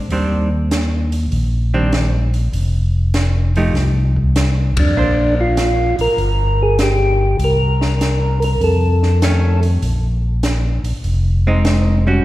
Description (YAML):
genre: soul jazz organ trio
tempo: 99 BPM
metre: 4/4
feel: swing 68% on 8ths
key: Bb major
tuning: A4 = 440 Hz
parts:
  - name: hollow-body jazz guitar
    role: accompaniment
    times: 0.1-12.2 s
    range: Eb3 to C5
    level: -20 LUFS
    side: right 2 dB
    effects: none
  - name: tonewheel organ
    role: bass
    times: 0.1-12.2 s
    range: F1 to F2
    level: -15 LUFS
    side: equal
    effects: overdrive, chorus vibrato, slow rotary speaker
  - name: open jazz drum kit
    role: drums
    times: 0.1-11.8 s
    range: hi-hat, kick drum, ride cymbal, snare drum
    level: -23 LUFS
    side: equal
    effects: slapback echo
  - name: percussive tonewheel organ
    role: melody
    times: 4.8-9.6 s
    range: D4 to Bb4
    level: -18 LUFS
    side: equal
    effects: slow rotary speaker, slapback echo
room: light reverb, studio reverb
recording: live gig heard through the venue's PA, recital hall reverb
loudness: -14 LUFS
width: side -16 dB against mid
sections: 0.0-12.2 A section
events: band accent 4.7-5.0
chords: 0.1 Eb6; 2.5 F5; 5.0 Bbadd9; 6.2 Gm; 7.4 Bbsus2/C; 8.6 Faug7; 9.8 Bb9sus4